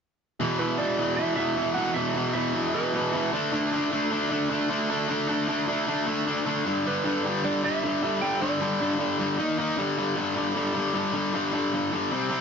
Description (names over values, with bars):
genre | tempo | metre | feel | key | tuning
punk | 154 BPM | 4/4 | straight | unclear | A4 = 440 Hz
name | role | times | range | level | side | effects
distorted electric guitar | riff | 0.4-12.4 s | E2 to D#4 | -26 LUFS | left 3 dB | overdrive
distorted electric guitar | riff | 0.4-12.4 s | E2 to D#4 | -28 LUFS | right 4 dB | distortion
lightly driven lead guitar | melody | 0.6-3.3, 6.9-9.2 s | B4 to G5 | -31 LUFS | right 4 dB | ping-pong delay
room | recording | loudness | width
moderate booth ambience, RT60 0.2 s | rough rehearsal-room recording, nothing above 7.7 kHz | -24 LUFS | side -6 dB against mid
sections
0.4-12.4 A section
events
none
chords
0.4 E5; 3.3 D5; 6.7 G; 9.4 D#5; 9.8 G5